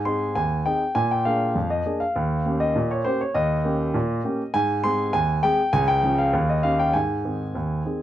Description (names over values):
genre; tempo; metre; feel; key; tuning
ragtime piano; 100 BPM; 2/4; straight; Ab major; A4 = 435 Hz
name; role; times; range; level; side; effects
warm grand piano; solo; 0.0-8.0 s; Db2 to C6; -20 LUFS; equal; none
room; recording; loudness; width
moderate studio ambience, RT60 0.5 s; none; -20 LUFS; side -12 dB against mid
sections
0.0-8.0 A section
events
none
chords
0.0 Ab; 1.0 Bb7; 2.2 Eb7; 4.5 Ab; 5.7 Db; 6.3 Eb7; 6.9 Ab